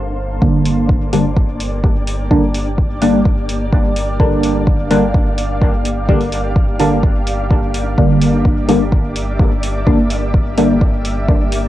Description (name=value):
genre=dub techno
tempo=127 BPM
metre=4/4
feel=straight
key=G dorian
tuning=A4 = 443 Hz
part: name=granular cloud pad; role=sustained chords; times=0.0-11.7 s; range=Bb3 to E5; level=-25 LUFS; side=equal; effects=built-in reverb, sidechain pumping, cassette tape
part: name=warm sub bass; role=bass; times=0.0-11.7 s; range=G1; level=-22 LUFS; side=equal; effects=sidechain pumping
part: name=flickering grainy texture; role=texture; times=0.0-11.7 s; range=D4 to F5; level=-28 LUFS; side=equal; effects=built-in reverb, sidechain pumping, cassette tape
part: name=deep mellow chord stab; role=stabs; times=0.4-10.8 s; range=D3 to D4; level=-16 LUFS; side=equal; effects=chorus, phaser, sidechain pumping, cassette tape, dub echo
part: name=electronic kick drum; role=drums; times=0.4-11.4 s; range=none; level=-14 LUFS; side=equal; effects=cassette tape
part: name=electronic hi-hat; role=drums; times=0.7-11.6 s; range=none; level=-28 LUFS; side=equal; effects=cassette tape
room=moderate spring reverb, RT60 1.6 s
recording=home recording on cassette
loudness=-12 LUFS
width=side -14 dB against mid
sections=0.4-11.7 A section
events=none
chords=0.4 Gm